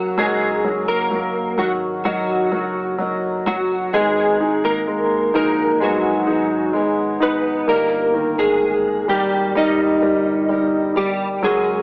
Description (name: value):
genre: pop ballad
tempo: 64 BPM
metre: 4/4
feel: straight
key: unclear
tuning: A4 = 440 Hz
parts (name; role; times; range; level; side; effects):
- direct-recorded clean electric guitar; melody; 0.0-11.8 s; F#3 to D#5; -19 LUFS; equal; ensemble chorus, cassette tape
- warm concert grand piano; accompaniment; 0.0-11.8 s; D#3 to D#4; -21 LUFS; equal; cassette tape
- fingerpicked swing-style acoustic guitar; arpeggios; 0.0-11.8 s; G#2 to A#4; -24 LUFS; equal; cassette tape
- fretless electric bass; bass; 0.0-11.8 s; F#1 to A#1; -35 LUFS; equal; none
- shimmering ambient pad; sustained chords; 11.8 s; none; barely audible; none; none
room: wet studio reverb, RT60 0.6 s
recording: home recording on cassette, AM radio sound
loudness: -16 LUFS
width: side -28 dB against mid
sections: 0.0-11.8 A section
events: none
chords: 0.2 D#m/F#; 3.9 G#m7; 7.7 D#/G